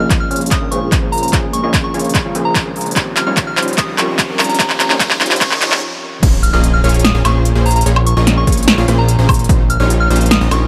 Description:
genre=future bass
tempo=147 BPM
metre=4/4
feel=half-time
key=Bb dorian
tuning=A4 = 436 Hz
part: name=soft synth bell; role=melody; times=0.0-10.6 s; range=Bb5 to F6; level=-24 LUFS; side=equal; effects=chorus, sidechain pumping
part: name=tine electric piano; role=accompaniment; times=0.0-6.2 s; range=F3 to Ab4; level=-28 LUFS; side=equal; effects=sidechain pumping
part: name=shimmering ambient pad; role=sustained chords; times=0.0-5.8 s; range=Db3 to Bb4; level=-34 LUFS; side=equal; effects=none
part: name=supersaw stab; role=riff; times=0.0-10.7 s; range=G3 to F5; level=-24 LUFS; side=equal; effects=sidechain pumping, low-pass filter
part: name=fat analog bass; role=bass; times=0.0-10.7 s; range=Bb1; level=-18 LUFS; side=equal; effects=sidechain pumping, high-pass filter
part: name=riser and impact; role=sound effects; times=0.0-7.9 s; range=none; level=-30 LUFS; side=equal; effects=none
part: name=big-room dance drum kit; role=drums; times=0.1-10.6 s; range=crash cymbal, handclaps, hi-hat, snare drum, woodblock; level=-18 LUFS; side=equal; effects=overdrive, high-pass filter on snare, high-pass filter on hats, high-pass filter on cymbals, high-pass filter on perc, high-pass filter on room
part: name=electronic kick drum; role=drums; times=0.1-9.6 s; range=none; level=-18 LUFS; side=equal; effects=overdrive
room=little or no reverb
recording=high-pass filter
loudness=-14 LUFS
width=mono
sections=0.0-6.2 A section; 6.2-10.7 B section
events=build-up 0.0-6.2; drum fill 0.0-5.8; filter sweep on supersaw synth 0.0-6.2; filter sweep 0.0-6.2; stop 5.8-6.2; drop 6.2-10.7; impact 6.2-7.9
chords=0.0 Bbm7; 3.0 Eb13/Bb; 6.2 Bbm7; 9.5 Eb13/Bb

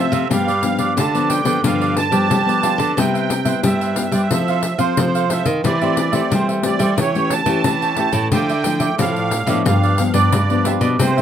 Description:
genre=samba and choro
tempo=90 BPM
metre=4/4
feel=straight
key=unclear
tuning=A4 = 441 Hz
part: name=musette accordion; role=melody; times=0.0-11.2 s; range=C5 to A5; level=-22 LUFS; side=right 6 dB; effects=none
part: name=cavaquinho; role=accompaniment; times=0.0-11.2 s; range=E4 to G5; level=-23 LUFS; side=right 5 dB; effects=none
part: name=nylon-string guitar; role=accompaniment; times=0.0-11.2 s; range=G2 to A4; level=-22 LUFS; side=left 5 dB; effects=none
part: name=nylon-string guitar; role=bass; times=0.0-11.2 s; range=G2 to G3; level=-20 LUFS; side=equal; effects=none
part: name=pandeiro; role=percussion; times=0.1-11.2 s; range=none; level=-22 LUFS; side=left 4 dB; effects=none
room=light reverb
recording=close, detailed microphones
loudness=-15 LUFS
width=side -9 dB against mid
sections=0.0-11.2 A section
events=none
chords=0.3 G7; 3.0 Cmaj7; 4.3 Fmaj7; 5.6 C6/E; 7.0 A7/E; 8.3 Dmadd9; 9.7 G7

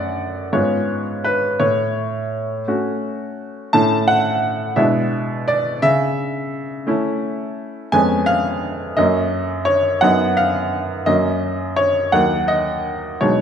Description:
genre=classical-period piano sonatina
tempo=57 BPM (dotted quarters)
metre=6/8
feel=rubato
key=F# major from 7.9 s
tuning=A4 = 440 Hz
part: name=bright baby grand piano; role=solo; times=0.0-13.4 s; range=D#2 to A5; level=-17 LUFS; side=equal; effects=none
room=moderate recital hall reverb, RT60 1.4 s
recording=none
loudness=-17 LUFS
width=side -8 dB against mid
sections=0.0-13.4 A section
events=none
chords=0.0 F#m; 0.5 C#7/G#; 1.6 F#m/A; 3.7 A; 4.8 E7/B; 5.8 A/C#; 7.9 C#7/E#; 9.0 F#; 10.0 B/F#; 11.1 F#; 12.1 D#m

